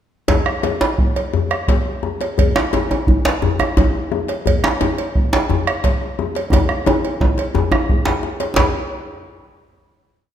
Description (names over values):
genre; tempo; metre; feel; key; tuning
west african traditional, West African drum ensemble; 116 BPM (dotted quarters); 12/8; straight; none; none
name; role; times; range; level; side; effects
bombo; percussion; 0.3-8.7 s; none; -19 LUFS; right 1 dB; none
cowbell; percussion; 0.3-8.7 s; none; -25 LUFS; right 4 dB; none
djembe; percussion; 0.3-8.7 s; none; -22 LUFS; left 7 dB; none
djembe; percussion; 0.3-8.7 s; none; -19 LUFS; right 1 dB; none
room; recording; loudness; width
wet recital hall reverb, RT60 1.7 s; none; -16 LUFS; side -10 dB against mid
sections
0.3-8.6 A section; 8.6-10.3 final hit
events
speeding up 0.3-10.3; drum fill 6.5-8.6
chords
none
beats
| 0.29 0.81 1.34 1.86 | 2.39 2.91 3.43 3.95 | 4.47 4.99 5.51 6.02 | 6.53 7.04 7.55 8.06 | 8.57